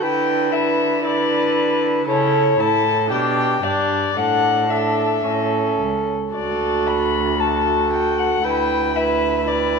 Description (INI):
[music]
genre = quick classical-period movement for string quartet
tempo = 115 BPM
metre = 4/4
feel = rubato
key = D major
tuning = A4 = 439 Hz
[part]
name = dark violin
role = melody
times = 0.0-9.8 s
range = C#5 to B5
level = -21 LUFS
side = left 8 dB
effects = none
[part]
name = dark violin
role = second line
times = 0.0-9.8 s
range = G4 to B4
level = -21 LUFS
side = right 1 dB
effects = none
[part]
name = warm viola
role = accompaniment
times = 0.0-9.8 s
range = C#4 to F#4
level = -24 LUFS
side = right 2 dB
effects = none
[part]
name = rich cello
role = bass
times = 0.0-9.8 s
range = C#2 to D3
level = -24 LUFS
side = right 6 dB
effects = none
[sound]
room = moderate scoring stage reverb, RT60 1.6 s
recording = minimal, uncompressed stereo recording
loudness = -16 LUFS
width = side -5 dB against mid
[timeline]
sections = 0.0-9.8 A section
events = none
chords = 0.0 Em7/D; 2.1 A/C#; 3.1 G/B; 4.2 Asus4; 5.2 A; 6.3 D; 8.4 Em7/D